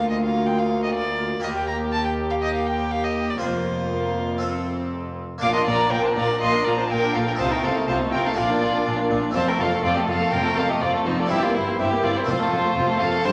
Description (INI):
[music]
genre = classical, baroque-style concerto movement with solo episodes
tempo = 122 BPM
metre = 4/4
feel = straight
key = Bb major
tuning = A4 = 441 Hz
[part]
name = rich violin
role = melody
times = 0.0-13.3 s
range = Eb4 to Bb5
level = -28 LUFS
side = equal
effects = none
[part]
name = warm studio violin section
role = melody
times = 0.0-13.3 s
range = A4 to D6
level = -31 LUFS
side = equal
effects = none
[part]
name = rich chamber violin section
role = second line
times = 0.0-13.3 s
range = D4 to Bb4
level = -30 LUFS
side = equal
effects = none
[part]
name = dark chamber viola section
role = accompaniment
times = 0.0-13.3 s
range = G3 to D4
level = -30 LUFS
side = equal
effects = none
[part]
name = harpsichord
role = accompaniment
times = 0.0-13.3 s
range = D2 to Bb4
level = -33 LUFS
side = equal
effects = none
[part]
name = rich chamber cello section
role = bass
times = 0.0-13.3 s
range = D2 to C3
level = -32 LUFS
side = equal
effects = none
[part]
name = rich chamber double bass section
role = bass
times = 0.0-13.3 s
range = F1 to Eb2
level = -34 LUFS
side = equal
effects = none
[sound]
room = wet recital hall reverb, RT60 1.4 s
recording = none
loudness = -22 LUFS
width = mono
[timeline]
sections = 0.0-5.4 A section; 5.4-13.3 B section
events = none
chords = 0.0 Bb/D; 1.4 Eb; 3.4 Fsus4; 4.4 F; 5.4 Bb; 7.4 F7/C; 8.4 Bb; 9.4 F; 11.3 C7/G; 12.3 F